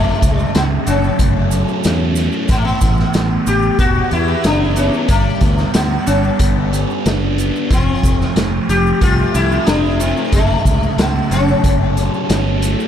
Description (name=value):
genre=psychedelic rock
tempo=92 BPM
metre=4/4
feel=straight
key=unclear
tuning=A4 = 441 Hz
part: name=sitar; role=melody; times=0.0-12.3 s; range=A3 to G4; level=-19 LUFS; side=left 2 dB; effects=ping-pong delay
part: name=thick fuzz guitar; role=riff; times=0.0-12.9 s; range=F#2 to D4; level=-19 LUFS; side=right 1 dB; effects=distortion, phaser
part: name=fingered electric bass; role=bass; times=0.0-12.7 s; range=E1 to E2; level=-18 LUFS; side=equal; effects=none
part: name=vintage drum kit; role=drums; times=0.2-12.8 s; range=hi-hat, kick drum, snare drum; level=-18 LUFS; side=equal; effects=none
part: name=maracas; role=percussion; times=0.2-12.9 s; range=none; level=-32 LUFS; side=right 17 dB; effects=none
room=moderate cathedral reverb, RT60 5.0 s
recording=dreamy mix soaked in reverb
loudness=-13 LUFS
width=side -9 dB against mid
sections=0.0-12.9 A section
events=none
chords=0.0 F#m; 2.5 Aadd9; 5.1 Gmaj7; 7.7 F; 10.3 F#m